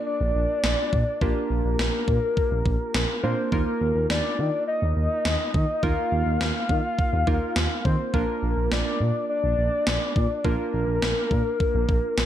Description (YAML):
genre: synth-pop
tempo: 104 BPM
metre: 4/4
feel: straight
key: Bb major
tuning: A4 = 441 Hz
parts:
  - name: soft octave-layered synth lead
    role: melody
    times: 0.0-12.3 s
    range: Bb4 to F5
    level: -26 LUFS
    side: left 2 dB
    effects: chorus, digital delay
  - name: warm analog keys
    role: accompaniment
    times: 0.0-12.3 s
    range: Bb3 to Bb4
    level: -31 LUFS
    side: right 4 dB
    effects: chorus
  - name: smooth gliding synth bass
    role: bass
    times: 0.2-12.3 s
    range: Bb1 to Eb3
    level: -25 LUFS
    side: equal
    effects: none
  - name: gated 80s digital drum machine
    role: drums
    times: 0.6-12.3 s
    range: kick drum, snare drum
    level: -26 LUFS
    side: equal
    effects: gated reverb, gated reverb snare
room: moderate lush hall reverb, RT60 1.6 s, digital ambience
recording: none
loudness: -22 LUFS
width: side -11 dB against mid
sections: 0.0-12.3 A section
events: none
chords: 0.0 Bb; 3.5 Ebsus2; 8.1 Bb